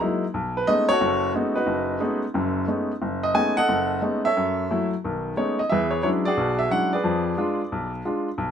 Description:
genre	jazz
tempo	179 BPM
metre	4/4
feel	swing 64% on 8ths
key	B mixolydian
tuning	A4 = 441 Hz
part	clear baby grand piano	solo	0.0-8.5 s	F#1 to G#5	-21 LUFS	equal	none
room	light reverb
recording	minimal, uncompressed stereo recording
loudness	-21 LUFS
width	side -8 dB against mid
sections	0.3-8.5 A section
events	none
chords	0.3 B13; 4.4 F#m7; 5.0 B13; 5.7 E13; 7.0 Fdim7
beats	0.01 | 0.34 0.68 1.01 1.35 | 1.68 2.02 2.35 2.69 | 3.02 3.36 3.69 4.03 | 4.36 4.70 5.03 5.37 | 5.70 6.04 6.37 6.71 | 7.04 7.38 7.71 8.05 | 8.38

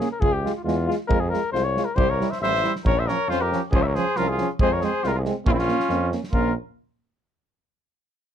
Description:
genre	balkan folk, Balkan brass band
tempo	137 BPM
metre	2/4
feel	swing 54% on 16ths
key	Bb dorian sharp4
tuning	A4 = 440 Hz
part	mellow flugelhorn	melody	0.0-6.5 s	E4 to E5	-25 LUFS	left 5 dB	none
part	clear trombone	accompaniment	0.0-6.5 s	C4 to F4	-32 LUFS	left 7 dB	none
part	warm euphonium	accompaniment	0.0-6.5 s	F3 to Bb3	-29 LUFS	right 8 dB	none
part	natural country drum kit	percussion	0.0-6.5 s	kick drum, snare drum	-26 LUFS	equal	none
part	clear tuba	bass	0.2-6.5 s	A1 to F2	-27 LUFS	right 1 dB	none
part	warm trumpet	second line	2.0-6.5 s	C4 to C5	-28 LUFS	right 6 dB	none
room	light reverb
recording	close, detailed microphones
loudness	-20 LUFS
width	side -9 dB against mid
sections	0.0-6.3 A section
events	none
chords	0.2 Db; 1.1 Fm; 2.0 C; 2.8 Bbm; 3.7 Db; 4.6 Fm; 5.5 Bbm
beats	| 0.21 0.65 | 1.09 1.53 | 1.97 2.41 | 2.85 3.28 | 3.72 4.16 | 4.59 5.03 | 5.46 5.90 | 6.33

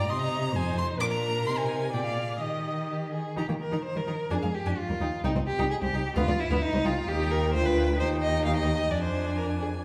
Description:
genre	quick classical-period movement for string quartet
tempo	130 BPM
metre	2/4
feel	straight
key	Eb major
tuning	A4 = 441 Hz
part	rich violin	melody	0.0-9.8 s	Bb4 to D6	-38 LUFS	equal	none
part	rich violin	second line	0.0-9.7 s	D4 to F5	-34 LUFS	equal	none
part	warm viola	accompaniment	0.0-9.8 s	F3 to Eb5	-34 LUFS	equal	none
part	rich cello	bass	0.0-9.8 s	C2 to Eb3	-32 LUFS	equal	none
room	wet recital hall reverb, RT60 1.4 s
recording	recorded in a church or concert hall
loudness	-28 LUFS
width	mono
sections	0.0-3.4 A section; 3.4-9.8 A section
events	none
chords	0.1 Cm; 0.5 Fm7; 1.0 Bb; 1.5 Ab/C; 1.9 Bb7; 2.4 Eb; 3.4 Eb5; 4.3 Ddim/F; 4.8 Eb; 5.2 Cm; 6.2 Bdim/D; 6.6 Cm; 7.1 Eb; 7.5 G7/D; 8.0 Eb; 8.9 Ddim/F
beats	0.09 | 0.55 1.00 | 1.47 1.93 | 2.41 2.89 | 3.37 3.84 | 4.30 4.77 | 5.24 5.70 | 6.16 6.62 | 7.08 7.54 | 8.00 8.46 | 8.91 9.38

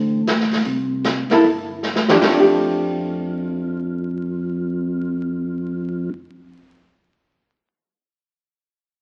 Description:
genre	soul jazz organ trio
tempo	154 BPM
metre	4/4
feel	swing 64% on 8ths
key	F major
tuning	A4 = 441 Hz
part	hollow-body jazz guitar	accompaniment	0.0-6.9 s	D3 to A4	-20 LUFS	equal	none
part	tonewheel organ	bass	0.0-6.1 s	G1 to F2	-25 LUFS	equal	overdrive, chorus vibrato, slow rotary speaker
part	vintage drum kit	drums	0.3-2.3 s	hi-hat, kick drum, snare drum	-24 LUFS	equal	none
room	wet large studio reverb, RT60 1.3 s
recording	very old 78 rpm record, vinyl crackle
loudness	-20 LUFS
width	mono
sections	0.0-2.2 A section; 2.2-5.3 B section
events	drum fill 1.8-2.2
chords	0.0 D7sus4; 0.7 C5; 2.2 F69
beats	0.27 | 0.66 1.05 1.44 1.83 | 2.22 2.61 3.00 3.39 | 3.78 4.17 4.56 4.95

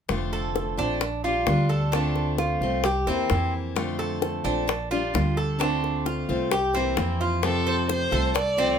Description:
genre	latin, Cuban son and guajira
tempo	131 BPM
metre	4/4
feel	straight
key	F major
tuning	A4 = 439 Hz
part	picked steel-string acoustic guitar	accompaniment	0.1-8.8 s	C3 to F4	-28 LUFS	left 3 dB	none
part	upright bass	bass	0.1-8.8 s	F1 to F2	-28 LUFS	right 1 dB	none
part	bongos	percussion	0.1-8.6 s	none	-28 LUFS	left 7 dB	none
part	Cuban tres	arpeggios	0.3-8.8 s	C4 to C5	-27 LUFS	right 3 dB	none
part	warm violin	melody	7.4-8.8 s	A4 to D5	-25 LUFS	right 2 dB	none
room	moderate studio reverb, RT60 0.5 s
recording	minimal, uncompressed stereo recording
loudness	-22 LUFS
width	side -8 dB against mid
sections	0.1-7.4 A section; 7.4-8.8 B section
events	none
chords	0.1 F6; 1.0 Bb6; 1.9 Dm7; 2.9 C7; 3.8 F6; 4.7 Bb6; 5.6 Dm7; 6.5 C7; 7.4 F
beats	| 0.10 0.56 1.01 1.47 | 1.93 2.39 2.85 3.31 | 3.77 4.23 4.69 5.14 | 5.60 6.06 6.52 6.98 | 7.44 7.89 8.35

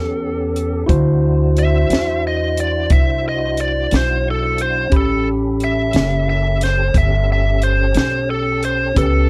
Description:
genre	slow blues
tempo	60 BPM (dotted quarters)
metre	12/8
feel	straight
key	unclear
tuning	A4 = 440 Hz
part	biting lead guitar	melody	0.0-9.3 s	A4 to E5	-22 LUFS	equal	overdrive
part	barky tine electric piano	accompaniment	0.0-9.3 s	C#4 to B5	-26 LUFS	equal	none
part	tonewheel organ	sustained chords	0.0-9.3 s	B3 to C5	-29 LUFS	equal	slow rotary speaker, chorus vibrato
part	upright bass	bass	0.0-9.3 s	F#1 to E2	-21 LUFS	equal	none
part	compact cocktail drum kit	drums	0.6-9.1 s	hi-hat, kick drum, snare drum	-20 LUFS	equal	none
room	light reverb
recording	dark, warm production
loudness	-17 LUFS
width	mono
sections	0.0-9.3 A section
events	none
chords	0.0 A9; 0.9 D9; 4.9 A9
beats	| 0.90 1.90 2.91 3.92 | 4.92 5.93 6.94 7.95 | 8.96

